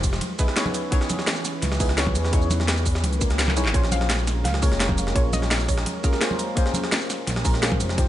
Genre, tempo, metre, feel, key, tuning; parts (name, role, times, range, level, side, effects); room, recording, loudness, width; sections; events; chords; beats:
liquid drum and bass; 170 BPM; 4/4; straight; Bb minor; A4 = 442 Hz
deep mellow chord stab; accompaniment; 0.0-8.1 s; Ab3 to Db5; -29 LUFS; left 1 dB; chorus, cassette tape, digital delay
warm analog pad; sustained chords; 0.0-8.1 s; Fb3 to Cb5; -34 LUFS; right 3 dB; chorus
smooth synth bass; bass; 0.0-8.1 s; F1 to Fb2; -24 LUFS; equal
drum and bass drum kit; drums; 0.0-8.1 s; handclaps, hi-hat, ride cymbal, shaker, snare drum; -28 LUFS; equal; studio ambience
electronic kick drum; drums; 0.0-8.1 s; -22 LUFS; equal; studio ambience
jungle sampler-style drum kit; drums; 0.0-8.1 s; hi-hat, snare drum; -29 LUFS; equal; high-pass filter on hats, studio ambience, high-pass filter on snare, high-pass filter on room
congas; percussion; 0.2-7.8 s; -32 LUFS; equal
swell; sound effects; 3.1-3.7 s; -36 LUFS; left 2 dB
soft round pluck; melody; 3.7-6.3 s; Db5 to F5; -33 LUFS; equal; chorus, digital delay
digital ambience; nothing above 10.9 kHz; -20 LUFS; side -13 dB against mid
0.0-8.1 A section
swell 3.1-3.7; drum fill 3.5
0.2 Dbm7; 3.7 Bbm7
0.21 0.57 | 0.92 1.27 1.63 1.98 | 2.33 2.69 3.04 3.39 | 3.74 4.10 4.45 4.80 | 5.16 5.51 5.86 6.21 | 6.57 6.92 7.27 7.63 | 7.98